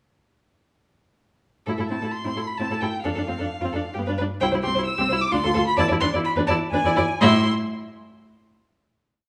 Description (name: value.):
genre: quick classical-period movement for string quartet.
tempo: 130 BPM.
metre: 3/4.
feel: straight.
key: A minor.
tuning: A4 = 440 Hz.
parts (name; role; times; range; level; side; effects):
warm violin; melody; 1.7-7.5 s; E5 to E6; -28 LUFS; equal; none.
warm violin; second line; 1.7-7.5 s; E4 to E5; -30 LUFS; equal; none.
clear viola; accompaniment; 1.7-7.5 s; B3 to F4; -29 LUFS; equal; none.
rich cello; bass; 1.7-7.5 s; C2 to A2; -28 LUFS; equal; none.
room: moderate recital hall reverb, RT60 1.6 s.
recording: small room ambience.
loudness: -23 LUFS.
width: mono.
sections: 1.7-7.2 A section; 7.2-8.6 final chord.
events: none.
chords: 1.7 Am; 3.1 F5; 4.0 G; 4.4 C; 5.3 Dm; 5.8 E5; 7.2 A5.